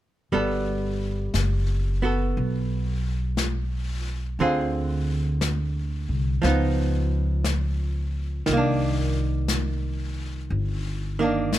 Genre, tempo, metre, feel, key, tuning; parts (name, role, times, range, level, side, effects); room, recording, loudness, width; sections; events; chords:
jazz ballad; 59 BPM; 4/4; swing 67% on 8ths; A4 = 442 Hz
archtop guitar, miked and amplified; accompaniment; 0.3-11.6 s; D3 to A4; -26 LUFS; right 2 dB
upright bass; bass; 0.3-11.6 s; F#1 to D2; -25 LUFS; equal
jazz brush drum kit; drums; 0.3-11.6 s; brushed snare drum, hi-hat, snare drum; -32 LUFS; left 4 dB
little or no reverb; close, detailed microphones; -23 LUFS; side -13 dB against mid
0.3-11.6 A section
0.3 Gmaj9; 4.4 Dm7b5; 6.4 C#9; 8.5 Cm9